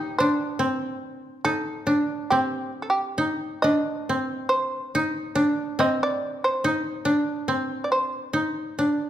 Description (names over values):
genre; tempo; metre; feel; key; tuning
japanese traditional, Japanese chamber music; 70 BPM; 2/4; rubato; C kumoi; A4 = 440 Hz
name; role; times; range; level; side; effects
shamisen; melody; 0.0-9.1 s; G4 to Eb5; -25 LUFS; right 1 dB; none
koto; second line; 0.0-9.1 s; C4 to Eb4; -24 LUFS; equal; none
room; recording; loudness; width
moderate recital hall reverb, RT60 1.7 s; minimal, uncompressed stereo recording; -22 LUFS; side -11 dB against mid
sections
0.0-9.1 A section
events
none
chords
none